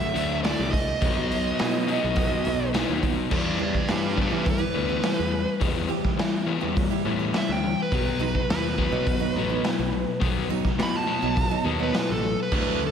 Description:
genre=quiet-loud alternative rock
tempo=104 BPM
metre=4/4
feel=straight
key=E minor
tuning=A4 = 441 Hz
part: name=dark smooth lead guitar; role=melody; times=0.0-12.9 s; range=G4 to B5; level=-29 LUFS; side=right 2 dB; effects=overdrive, slapback echo, analog delay
part: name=fingerpicked steel-string acoustic guitar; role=arpeggios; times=0.0-12.1 s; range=B2 to G4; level=-32 LUFS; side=right 10 dB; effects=none
part: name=overdriven semi-hollow guitar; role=riff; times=0.0-12.9 s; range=B2 to D#4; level=-28 LUFS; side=left 8 dB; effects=spring reverb, slapback echo
part: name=modern bright picked electric bass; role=bass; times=0.2-12.9 s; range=A1 to E3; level=-31 LUFS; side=right 1 dB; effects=none
part: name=raw garage drum kit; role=drums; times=0.2-12.7 s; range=crash cymbal, hi-hat, kick drum, snare drum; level=-27 LUFS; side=right 1 dB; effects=none
part: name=distorted electric guitar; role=riff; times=12.5-12.9 s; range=D3 to D4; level=-29 LUFS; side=right 15 dB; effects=overdrive
room=moderate lush hall reverb, RT60 2.5 s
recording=big arena sound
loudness=-22 LUFS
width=side -8 dB against mid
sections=0.0-3.3 A section; 3.3-12.9 B section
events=lead electric guitar solo 3.3-12.9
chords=0.0 D; 1.0 B; 3.3 Em; 7.9 B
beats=0.45 | 1.02 1.60 2.17 2.75 | 3.32 3.90 4.47 5.04 | 5.62 6.20 6.77 7.35 | 7.92 8.50 9.07 9.65 | 10.22 10.80 11.37 11.95 | 12.52

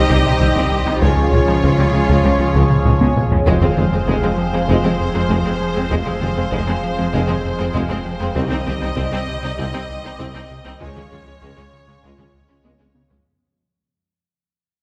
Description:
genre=cinematic, hybrid orchestral and electronic film score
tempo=98 BPM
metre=4/4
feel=straight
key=F minor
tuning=A4 = 440 Hz
part: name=warm symphonic violin section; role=melody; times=0.0-13.0 s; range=C5 to Eb5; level=-29 LUFS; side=equal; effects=none
part: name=warm symphonic violin section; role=second line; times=0.0-13.2 s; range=Ab3 to G4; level=-29 LUFS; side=equal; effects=none
part: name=chorused pulse-width pad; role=sustained chords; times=0.0-13.3 s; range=F3 to F5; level=-25 LUFS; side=equal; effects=phaser
part: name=dark French horn section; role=sustained chords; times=0.0-12.3 s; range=G3 to F4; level=-32 LUFS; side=equal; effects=none
part: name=thumb-piano-like synth pluck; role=arpeggios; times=0.0-13.2 s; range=C3 to F4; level=-28 LUFS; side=equal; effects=none
part: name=round analog bass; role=riff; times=0.0-13.2 s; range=C2 to F3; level=-25 LUFS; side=equal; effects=none
part: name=warm sub bass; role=bass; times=0.0-13.3 s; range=F1 to Db2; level=-28 LUFS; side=equal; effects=none
part: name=rich symphonic viola section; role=accompaniment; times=0.1-13.2 s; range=F3 to C4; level=-29 LUFS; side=equal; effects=none
part: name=clear studio double bass section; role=bass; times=0.1-12.7 s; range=F1 to Db2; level=-29 LUFS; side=equal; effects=none
part: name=mellow tuba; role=bass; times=0.1-12.7 s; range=F1 to Db2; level=-29 LUFS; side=equal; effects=none
part: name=rich symphonic cello section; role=bass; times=0.1-13.2 s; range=C2 to Db3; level=-30 LUFS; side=equal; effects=none
part: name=taiko ensemble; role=drums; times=0.1-13.4 s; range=none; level=-26 LUFS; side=equal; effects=none
room=wet concert hall reverb, RT60 2.0 s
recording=none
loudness=-17 LUFS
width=mono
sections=0.0-3.5 A section; 3.5-13.3 B section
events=drum fill 2.9-3.5, 12.6-13.3; fade-out 3.5-13.3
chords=0.0 Cm; 1.0 Db; 3.5 Fm; 8.4 Cm; 10.8 Db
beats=0.40 | 1.02 1.63 2.24 2.85 | 3.47 4.08 4.69 5.30 | 5.92 6.53 7.14 7.75 | 8.36 8.98 9.59 10.20 | 10.81 11.43 12.04 12.65

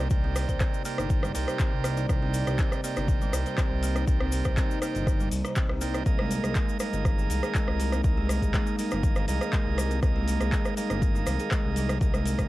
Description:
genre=afro house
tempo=121 BPM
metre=4/4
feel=straight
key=C minor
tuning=A4 = 439 Hz
part: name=warm analog pad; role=sustained chords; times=0.0-12.5 s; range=C3 to D5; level=-37 LUFS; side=left 1 dB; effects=chorus, sidechain pumping, cassette tape
part: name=buzzing kalimba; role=arpeggios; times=0.0-12.5 s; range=Eb3 to C5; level=-34 LUFS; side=equal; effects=sidechain pumping, cassette tape, analog delay
part: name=bright tonewheel organ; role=stabs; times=0.0-12.5 s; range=Bb3 to Eb5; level=-34 LUFS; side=right 8 dB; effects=overdrive, stopped rotary speaker, sidechain pumping, cassette tape, analog delay
part: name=smooth synth bass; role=bass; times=0.0-12.5 s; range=G1 to C2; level=-29 LUFS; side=equal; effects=sidechain pumping
part: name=afro-pop drum kit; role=drums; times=0.1-12.5 s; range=handclaps, hi-hat, rim click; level=-34 LUFS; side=equal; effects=overdrive, cassette tape
part: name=electronic kick drum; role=drums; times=0.1-12.5 s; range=none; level=-26 LUFS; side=equal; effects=overdrive, cassette tape
part: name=cabasa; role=percussion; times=0.1-12.5 s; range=none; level=-42 LUFS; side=left 11 dB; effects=none
room=light reverb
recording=home recording on cassette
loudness=-24 LUFS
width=side -17 dB against mid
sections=0.0-12.5 A section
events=none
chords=0.0 Cm7; 6.1 Absus2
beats=| 0.11 0.61 1.10 1.60 | 2.09 2.59 3.08 3.58 | 4.08 4.57 5.07 5.57 | 6.06 6.56 7.05 7.55 | 8.04 8.54 9.04 9.53 | 10.03 10.52 11.02 11.52 | 12.01

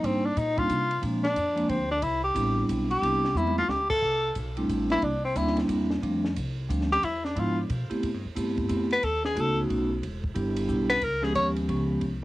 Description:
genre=jazz, small-group swing and bop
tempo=180 BPM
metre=3/4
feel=swing 63% on 8ths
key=C major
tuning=A4 = 441 Hz
part: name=warm tenor saxophone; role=melody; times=0.0-11.5 s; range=C4 to Db5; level=-26 LUFS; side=left 1 dB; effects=cassette tape
part: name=vibraphone with medium mallets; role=accompaniment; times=0.0-12.0 s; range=F3 to G4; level=-28 LUFS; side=right 1 dB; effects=cassette tape
part: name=upright bass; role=bass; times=0.0-12.2 s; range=E1 to C3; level=-32 LUFS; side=equal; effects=tube saturation
part: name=compact cocktail drum kit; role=drums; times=0.0-12.1 s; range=crash cymbal, hi-hat, kick drum, ride cymbal, snare drum, toms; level=-36 LUFS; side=equal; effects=cassette tape
room=light reverb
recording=home recording on cassette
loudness=-24 LUFS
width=side -17 dB against mid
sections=0.0-4.0 A section; 4.0-12.0 A section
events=tenor saxophone solo 0.0-12.0; drum fill 3.4-3.7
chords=0.0 Abmaj9#11; 1.0 Bb9; 2.0 Cmaj7; 4.0 C69; 5.0 C9; 6.0 F69; 7.0 E7b9; 8.0 Am9; 9.0 B7; 10.0 Em7; 11.0 Db7#11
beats=| 0.02 0.36 0.69 | 1.02 1.36 1.69 | 2.02 2.36 2.69 | 3.02 3.36 3.69 | 4.02 4.36 4.69 | 5.02 5.36 5.69 | 6.02 6.36 6.69 | 7.02 7.36 7.69 | 8.02 8.35 8.69 | 9.02 9.35 9.68 | 10.02 10.35 10.68 | 11.02 11.35 11.68 | 12.01

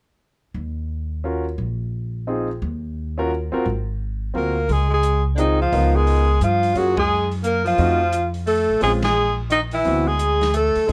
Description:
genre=jazz, small-group swing and bop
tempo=174 BPM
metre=3/4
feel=swing 63% on 8ths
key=Db major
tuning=A4 = 438 Hz
part: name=upright bass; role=bass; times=0.5-10.9 s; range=Ab1 to G2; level=-25 LUFS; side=equal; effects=none
part: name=clear grand piano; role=accompaniment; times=1.2-10.9 s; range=Ab3 to Bb4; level=-27 LUFS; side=equal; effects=none
part: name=bright alto saxophone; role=second line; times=4.3-10.9 s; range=D3 to Bb3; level=-29 LUFS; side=equal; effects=none
part: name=clear alto saxophone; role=melody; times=4.4-10.9 s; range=D4 to Bb4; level=-22 LUFS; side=equal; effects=none
part: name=open jazz drum kit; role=drums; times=4.7-10.9 s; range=hi-hat, kick drum, ride cymbal, snare drum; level=-36 LUFS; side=equal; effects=none
room=light reverb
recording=none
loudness=-21 LUFS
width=mono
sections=0.5-4.7 A section; 4.7-10.9 B section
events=band accent 6.9, 9.0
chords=0.5 Ebm9; 1.6 Bb9sus4; 2.6 Ebmadd9; 3.7 Ab13; 4.7 Dbmaj9; 5.7 Db13; 6.8 Gbmaj9; 7.8 F7b9; 8.8 Bbm9; 9.9 D13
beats=| 0.54 0.89 1.24 | 1.58 1.93 2.27 | 2.62 2.96 3.31 | 3.65 4.00 4.34 | 4.69 5.04 5.38 | 5.72 6.07 6.41 | 6.76 7.10 7.45 | 7.79 8.13 8.48 | 8.82 9.16 9.51 | 9.85 10.20 10.54 | 10.88

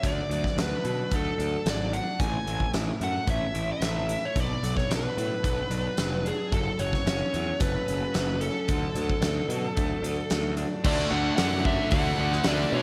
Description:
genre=quiet-loud alternative rock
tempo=111 BPM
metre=4/4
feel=straight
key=unclear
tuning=A4 = 442 Hz
part: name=bluesy overdriven lead guitar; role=melody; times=0.0-12.8 s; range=G#4 to G#5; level=-33 LUFS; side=equal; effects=distortion, slapback echo
part: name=twelve-string electric guitar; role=arpeggios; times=0.0-10.8 s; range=F#2 to E4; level=-37 LUFS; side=equal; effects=slapback echo
part: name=fuzz picked electric bass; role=bass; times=0.0-12.8 s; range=F1 to B2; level=-32 LUFS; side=equal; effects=overdrive
part: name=big rock drum kit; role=drums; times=0.0-12.6 s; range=crash cymbal, hi-hat, kick drum, snare drum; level=-32 LUFS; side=equal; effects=none
part: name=overdriven semi-hollow guitar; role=riff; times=10.8-12.8 s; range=D3 to D4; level=-33 LUFS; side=equal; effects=slapback echo
part: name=raw garage guitar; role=riff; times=10.8-12.8 s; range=D3 to D4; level=-34 LUFS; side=equal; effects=overdrive
room=light reverb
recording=none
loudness=-27 LUFS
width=mono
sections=0.0-10.8 A section; 10.8-12.8 B section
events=none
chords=0.0 D; 2.2 A; 4.4 Bm; 6.5 F#m; 8.7 D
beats=| 0.04 0.58 1.12 1.66 | 2.20 2.74 3.28 3.82 | 4.36 4.90 5.45 5.99 | 6.53 7.07 7.61 8.15 | 8.69 9.23 9.77 10.31 | 10.84 11.38 11.92 12.45

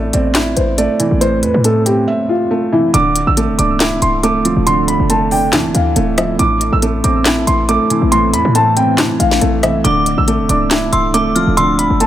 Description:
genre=hip hop, trap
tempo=139 BPM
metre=4/4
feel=half-time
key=unclear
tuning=A4 = 441 Hz
part: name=felt-muted upright piano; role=accompaniment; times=0.0-12.1 s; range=A2 to E5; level=-16 LUFS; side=right 2 dB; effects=low-pass filter
part: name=short 808-style bass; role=bass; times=0.0-12.1 s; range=C1 to A2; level=-18 LUFS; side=left 1 dB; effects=none
part: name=dark concert grand piano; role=melody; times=0.1-12.1 s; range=E4 to E6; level=-16 LUFS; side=equal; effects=low-pass filter, digital delay
part: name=trap drum kit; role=drums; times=0.1-12.1 s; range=handclaps, hi-hat, rim click, snare drum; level=-17 LUFS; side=left 1 dB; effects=none
part: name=deep dark ambient pad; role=sustained chords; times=3.9-12.1 s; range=D3 to A4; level=-23 LUFS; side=left 1 dB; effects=chorus, built-in reverb
part: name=metallic FM bell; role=second line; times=9.8-12.1 s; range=D6 to F6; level=-21 LUFS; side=left 5 dB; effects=chorus, digital delay
room=light reverb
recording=none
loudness=-11 LUFS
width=side -12 dB against mid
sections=0.0-2.9 A section; 2.9-12.1 B section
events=silent gap 2.1-2.9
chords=0.0 Am; 2.9 Dmadd9; 6.4 Am; 9.8 Dmadd9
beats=0.35 0.78 | 1.21 1.65 2.08 2.51 | 2.94 3.37 3.80 4.24 | 4.67 5.10 5.53 5.96 | 6.39 6.83 7.26 7.69 | 8.12 8.55 8.98 9.41 | 9.85 10.28 10.71 11.14 | 11.57 12.00

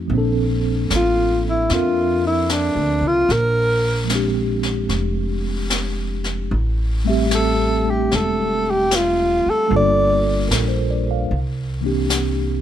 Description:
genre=jazz ballad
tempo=75 BPM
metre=4/4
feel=swing 68% on 8ths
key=unclear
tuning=A4 = 440 Hz
part: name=mellow tine electric piano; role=accompaniment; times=0.0-12.6 s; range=E3 to F5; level=-22 LUFS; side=right 1 dB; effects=medium stereo tremolo
part: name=upright bass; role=bass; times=0.0-12.6 s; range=E1 to F2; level=-22 LUFS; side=equal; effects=none
part: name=jazz brush drum kit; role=drums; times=0.1-12.6 s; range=brushed snare drum, hi-hat, snare drum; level=-27 LUFS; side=left 3 dB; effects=none
part: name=breathy alto saxophone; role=melody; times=1.0-10.5 s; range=D4 to D5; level=-18 LUFS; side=equal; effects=none
room=little or no reverb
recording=none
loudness=-17 LUFS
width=side -10 dB against mid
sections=0.0-12.6 A section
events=none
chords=0.1 Bbmaj9; 3.3 Bb13; 6.5 Am7; 9.7 Gm9; 11.3 C7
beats=| 0.11 0.91 1.71 2.50 | 3.30 4.10 4.90 5.71 | 6.51 7.32 8.12 8.92 | 9.71 10.51 11.30 12.10

